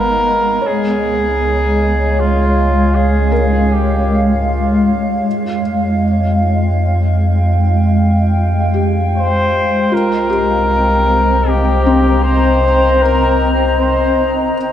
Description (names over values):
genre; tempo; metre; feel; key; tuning
ambient; 78 BPM; 3/4; straight; Db lydian; A4 = 442 Hz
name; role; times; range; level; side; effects
warm flugelhorn; melody; 0.0-5.0, 9.2-14.3 s; F4 to C5; -17 LUFS; equal; tape echo
granular cloud pad; sustained chords; 0.0-14.7 s; Ab3 to Bb5; -16 LUFS; equal; built-in reverb
warm sub bass; bass; 0.0-14.7 s; Ab1 to F2; -16 LUFS; equal; none
glass harmonica; texture; 0.0-14.7 s; Eb5 to F5; -30 LUFS; left 2 dB; none
felt-muted upright piano; arpeggios; 0.6-14.6 s; C4 to Db5; -22 LUFS; left 2 dB; tape echo
room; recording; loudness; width
wet cathedral reverb, RT60 4.9 s; in a vast, echoing space; -12 LUFS; side -10 dB against mid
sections
0.6-14.7 A section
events
none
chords
0.0 Abm; 0.6 Db; 5.3 Fmadd9; 9.9 Cm7